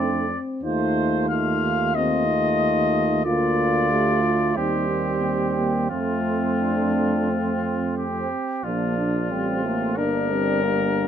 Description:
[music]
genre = classical, brass quintet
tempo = 91 BPM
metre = 4/4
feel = rubato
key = Bb major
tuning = A4 = 441 Hz
[part]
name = warm trumpet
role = melody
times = 0.0-11.1 s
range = F4 to F5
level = -25 LUFS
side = left 4 dB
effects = none
[part]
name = warm flugelhorn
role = second line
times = 0.0-11.1 s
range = Bb3 to F4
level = -28 LUFS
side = right 5 dB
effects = none
[part]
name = clear trombone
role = accompaniment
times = 0.0-11.1 s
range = F3 to D4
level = -28 LUFS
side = right 3 dB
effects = none
[part]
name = dark French horn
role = accompaniment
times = 0.0-11.1 s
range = A3 to G4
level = -27 LUFS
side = left 4 dB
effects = none
[part]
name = warm tuba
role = bass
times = 0.0-11.1 s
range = G1 to F2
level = -27 LUFS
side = right 4 dB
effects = none
[sound]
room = light reverb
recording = close, detailed microphones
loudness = -20 LUFS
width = side -9 dB against mid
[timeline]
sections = 0.0-8.7 A section; 8.7-11.1 B section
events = none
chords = 0.0 F; 0.6 F7/Eb; 3.3 Bb/D; 4.6 Cm/Eb; 5.9 F; 8.7 Bb; 10.0 Gm

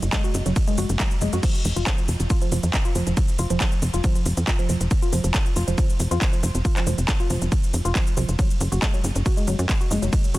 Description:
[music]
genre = driving peak-time techno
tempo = 138 BPM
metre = 4/4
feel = straight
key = F phrygian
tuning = A4 = 440 Hz
[part]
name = tight sequencer bass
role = bass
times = 0.0-10.4 s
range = F1 to Gb2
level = -22 LUFS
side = equal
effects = tube saturation, sidechain pumping
[part]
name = techno drum kit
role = drums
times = 0.0-10.4 s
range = crash cymbal, handclaps, hi-hat, ride cymbal, shaker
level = -29 LUFS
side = equal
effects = overdrive
[part]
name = woody wave-folded pluck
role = riff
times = 0.1-10.4 s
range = F3 to Gb4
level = -29 LUFS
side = equal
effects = chorus, tube saturation, vintage 12-bit sampler grit, sidechain pumping, tape echo
[part]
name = electronic kick drum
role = drums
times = 0.1-10.2 s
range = none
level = -22 LUFS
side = equal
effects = overdrive
[sound]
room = digital ambience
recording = dense, heavily limited modern master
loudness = -20 LUFS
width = side -18 dB against mid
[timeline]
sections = 0.0-10.4 A section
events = none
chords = 0.0 Gbsus2; 1.4 F5; 8.4 Gbsus2

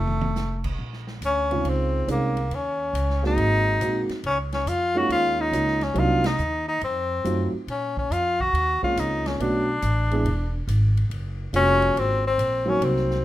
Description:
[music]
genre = jazz, small-group swing and bop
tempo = 140 BPM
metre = 4/4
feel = swing 66% on 8ths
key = Bb minor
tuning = A4 = 442 Hz
[part]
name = bright tenor saxophone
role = melody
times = 0.0-13.2 s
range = A3 to Gb4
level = -24 LUFS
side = left 1 dB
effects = none
[part]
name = upright bass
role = bass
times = 0.0-13.2 s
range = E1 to Bb2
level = -26 LUFS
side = equal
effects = none
[part]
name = swinging big-band drum kit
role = drums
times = 0.1-13.2 s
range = crash cymbal, hi-hat, kick drum, ride cymbal, snare drum, toms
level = -37 LUFS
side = equal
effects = none
[part]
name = dark concert grand piano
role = accompaniment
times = 1.5-13.2 s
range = Db3 to Ab4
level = -26 LUFS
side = right 2 dB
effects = none
[sound]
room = light reverb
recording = minimal, uncompressed stereo recording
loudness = -21 LUFS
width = side -14 dB against mid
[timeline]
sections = 0.8-13.2 A section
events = drum fill 0.0-0.4; band accent 6.2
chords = 0.0 F; 0.8 Bbm11; 2.5 Ebm7; 3.4 Ab9; 4.2 Db6; 6.0 Cm7b5; 6.8 F7b9; 7.7 Bbm9; 9.4 Bm7; 10.3 E7; 11.1 Gbmaj7

